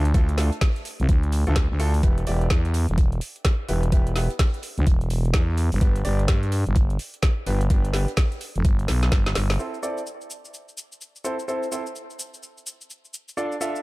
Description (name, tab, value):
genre	bass house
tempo	127 BPM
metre	4/4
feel	swing 62% on 16ths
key	A minor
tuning	A4 = 440 Hz
part	growling FM bass	bass	0.0-9.6 s	E1 to G2	-22 LUFS	equal	overdrive, sidechain pumping
part	bright concert grand piano	stabs	0.1-13.8 s	A3 to E5	-30 LUFS	equal	sidechain pumping, low-pass filter, dub echo
part	electronic kick drum	drums	0.1-9.2 s	none	-20 LUFS	equal	overdrive
part	garage drum kit	drums	0.1-13.8 s	hi-hat, shaker, snare drum	-31 LUFS	equal	overdrive
part	open jazz drum kit	drums	0.1-9.5 s	hi-hat, snare drum	-44 LUFS	right 4 dB	none
room	small room ambience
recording	dark, warm production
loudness	-20 LUFS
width	side -21 dB against mid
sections	0.0-9.6 A section; 9.6-13.8 B section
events	drum fill 8.9-9.6; filter sweep on grand piano 9.6-13.8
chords	0.0 Dm; 2.0 Em; 5.8 G; 9.6 Am